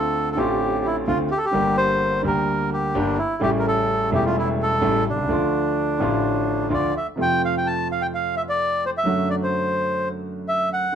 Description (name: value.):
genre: tango.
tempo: 128 BPM.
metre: 4/4.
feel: rubato.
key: D minor.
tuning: A4 = 440 Hz.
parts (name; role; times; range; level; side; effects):
bandoneon; melody; 0.0-11.0 s; D4 to A5; -22 LUFS; equal; none.
warm concert grand piano; accompaniment; 0.0-11.0 s; E1 to G4; -22 LUFS; equal; none.
room: moderate studio reverb, RT60 0.8 s.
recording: none.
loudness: -19 LUFS.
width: side -8 dB against mid.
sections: 0.0-7.2 A section; 7.2-11.0 B section.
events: none.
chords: 0.0 Dm7; 1.6 Gm; 3.4 A7; 5.3 Dm; 7.2 F; 9.1 D/F#.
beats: 0.15 0.62 1.09 | 1.56 2.03 2.49 2.96 | 3.43 3.89 4.36 4.82 | 5.29 5.76 6.23 6.71 | 7.18 7.65 8.12 8.59 | 9.06 9.53 10.00 10.47 | 10.93.